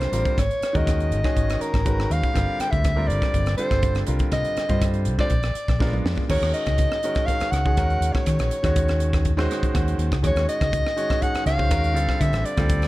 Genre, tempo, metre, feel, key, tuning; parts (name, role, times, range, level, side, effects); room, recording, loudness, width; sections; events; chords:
electric jazz fusion; 122 BPM; 4/4; straight; Eb dorian from 6.3 s; A4 = 440 Hz
warm soprano saxophone; melody; 0.0-12.9 s; Bb4 to G5; -26 LUFS; equal
bright concert grand piano; accompaniment; 0.0-12.9 s; D3 to Gb5; -28 LUFS; right 1 dB
fingered electric bass; bass; 0.0-12.9 s; G1 to Eb3; -23 LUFS; equal
crisp fusion drum kit; drums; 0.0-12.9 s; crash cymbal, hi-hat, kick drum, rim click, snare drum, toms; -25 LUFS; equal
small room ambience; dark, warm production; -20 LUFS; side -17 dB against mid
0.0-6.3 A section; 6.3-12.9 B section
drum fill 5.8-6.3; grand piano fill 9.3-10.2
0.4 Abm11; 2.3 Gm11; 4.1 Cm11; 5.3 Bb7b9; 6.3 Ebm7; 12.0 Dm7